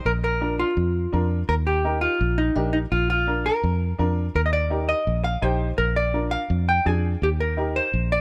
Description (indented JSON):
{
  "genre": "latin",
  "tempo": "168 BPM",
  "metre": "4/4",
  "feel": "straight",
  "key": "Eb major",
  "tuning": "A4 = 442 Hz",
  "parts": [
    { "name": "vintage hollow-body jazz guitar", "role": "melody", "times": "0.0-8.2 s", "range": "D4 to Ab5", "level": "-26 LUFS", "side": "equal", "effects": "none" },
    { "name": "fingered electric bass", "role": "bass", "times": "0.1-8.2 s", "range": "Bb1 to F2", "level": "-26 LUFS", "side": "equal", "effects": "none" },
    { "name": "warm upright piano", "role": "accompaniment", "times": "0.4-7.8 s", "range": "D4 to C5", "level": "-31 LUFS", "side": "equal", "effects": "none" }
  ],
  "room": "little or no reverb",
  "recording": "none",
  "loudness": "-23 LUFS",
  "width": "mono",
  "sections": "0.0-8.2 A section",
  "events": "none",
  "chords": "0.1 Bb; 1.5 Eb; 2.9 Bb; 4.3 Eb; 5.8 Bb7; 7.2 Eb",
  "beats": "| 0.05 0.41 0.77 1.13 | 1.49 1.84 2.20 2.56 | 2.92 3.27 3.63 3.99 | 4.35 4.71 5.07 5.42 | 5.78 6.14 6.50 6.86 | 7.21 7.57 7.93"
}